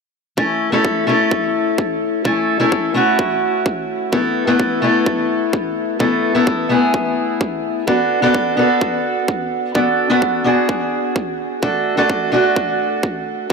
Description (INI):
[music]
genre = EDM, festival progressive house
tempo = 128 BPM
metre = 4/4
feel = straight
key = A major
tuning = A4 = 440 Hz
[part]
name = fingerpicked steel-string acoustic guitar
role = accompaniment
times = 0.4-13.5 s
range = A3 to A4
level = -15 LUFS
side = equal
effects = sidechain pumping, digital delay
[part]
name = electronic kick drum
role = drums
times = 0.4-13.5 s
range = none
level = -23 LUFS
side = right 1 dB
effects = high-pass filter on kick
[sound]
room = moderate huge ambient reverb, RT60 4.9 s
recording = none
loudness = -15 LUFS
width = side -4 dB against mid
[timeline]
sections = 0.4-13.5 A section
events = none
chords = 0.4 A; 4.1 Esus4; 7.9 Bm7; 11.6 D